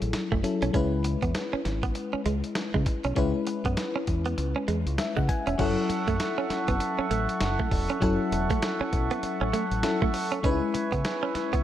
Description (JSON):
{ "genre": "R&B, new jack swing", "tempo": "99 BPM", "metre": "4/4", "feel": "swing 60% on 16ths", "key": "F# minor", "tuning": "A4 = 441 Hz", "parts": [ { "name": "FM electric piano", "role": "accompaniment", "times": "0.0-11.6 s", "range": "F#3 to G#5", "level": "-30 LUFS", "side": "left 4 dB", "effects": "chorus" }, { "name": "deep dub fingered electric bass", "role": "bass", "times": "0.0-11.6 s", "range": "E1 to C#3", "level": "-30 LUFS", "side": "equal", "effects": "none" }, { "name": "dusty soul sampler-style drum kit", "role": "drums", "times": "0.0-11.6 s", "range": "crash cymbal, hi-hat, kick drum, snare drum", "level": "-30 LUFS", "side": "equal", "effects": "none" }, { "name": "direct-recorded clean electric guitar", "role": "riff", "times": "0.3-11.6 s", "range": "F#3 to C#4", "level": "-32 LUFS", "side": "right 6 dB", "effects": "lush chorus" }, { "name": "mellow accordion", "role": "sustained chords", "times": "5.6-11.6 s", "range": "A4 to C#6", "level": "-31 LUFS", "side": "right 4 dB", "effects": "none" } ], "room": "light reverb, digital ambience", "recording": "none", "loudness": "-24 LUFS", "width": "side -11 dB against mid", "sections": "0.0-5.6 A section; 5.6-11.6 B section", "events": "none", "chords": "0.0 F#m7; 0.7 C#m7; 5.6 F#m7; 10.4 C#m7" }